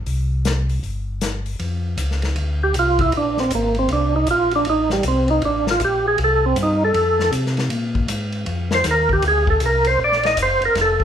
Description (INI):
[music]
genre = soul jazz organ trio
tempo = 157 BPM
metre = 4/4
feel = swing 64% on 8ths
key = F mixolydian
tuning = A4 = 439 Hz
[part]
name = mellow tonewheel organ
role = bass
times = 0.0-11.0 s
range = F1 to C3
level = -22 LUFS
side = left 1 dB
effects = slow rotary speaker
[part]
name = warm soul drum kit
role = drums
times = 0.1-11.0 s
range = hi-hat, kick drum, ride cymbal, snare drum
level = -26 LUFS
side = left 2 dB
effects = none
[part]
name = overdriven tonewheel organ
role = melody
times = 2.6-11.0 s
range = G3 to Eb5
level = -17 LUFS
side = right 1 dB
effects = slow rotary speaker, chorus vibrato
[sound]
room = moderate large studio reverb, RT60 0.8 s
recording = band playing live in one room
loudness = -17 LUFS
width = side -9 dB against mid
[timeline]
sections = 0.0-1.6 A section; 1.6-11.0 B section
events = tonewheel organ solo 1.6-11.0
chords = 0.1 C5; 1.6 F5; 3.1 Bbsus2; 4.7 Fadd9; 7.7 Bb9